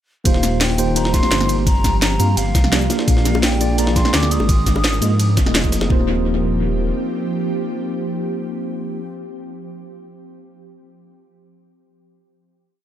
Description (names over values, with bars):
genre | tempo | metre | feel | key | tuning
liquid drum and bass | 170 BPM | 4/4 | straight | Eb major | A4 = 440 Hz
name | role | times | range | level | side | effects
mellow tine electric piano | accompaniment | 0.2-9.0 s | Bb3 to F5 | -23 LUFS | equal | medium stereo tremolo, analog delay
mellow hollow concert flute | melody | 0.3-5.4 s | F5 to Eb6 | -26 LUFS | left 1 dB | analog delay
ethereal airy pad | sustained chords | 0.7-9.0 s | F3 to Bb4 | -26 LUFS | right 1 dB | ensemble chorus, built-in reverb, sidechain pumping
dark detuned saw bass | bass | 0.3-6.9 s | Eb1 to Ab2 | -20 LUFS | equal | none
drum and bass drum kit | drums | 0.3-5.8 s | hi-hat, shaker, snare drum | -22 LUFS | equal | analog delay
electronic kick drum | drums | 0.3-6.0 s | none | -17 LUFS | equal | none
jungle sampler-style drum kit | drums | 0.3-5.9 s | hi-hat, ride cymbal, snare drum | -27 LUFS | equal | high-pass filter on cymbals, high-pass filter on snare, high-pass filter on hats, analog delay
bongos | percussion | 3.3-5.9 s | none | -31 LUFS | left 1 dB | none
room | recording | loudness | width
light reverb | echo-heavy mix | -15 LUFS | side -11 dB against mid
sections
0.3-5.9 drop; 5.9-8.7 final chord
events
drop 0.3-5.9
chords
0.3 Eb69; 1.7 Gm7; 3.1 Bb7; 4.5 Ab69; 5.9 Eb69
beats
| 0.25 0.61 0.96 1.31 | 1.67 2.02 2.37 2.73 | 3.08 3.43 3.78 4.14 | 4.49 4.84 5.20 5.55 | 5.90 6.25 6.61 6.96 | 7.31 7.67 8.02 8.37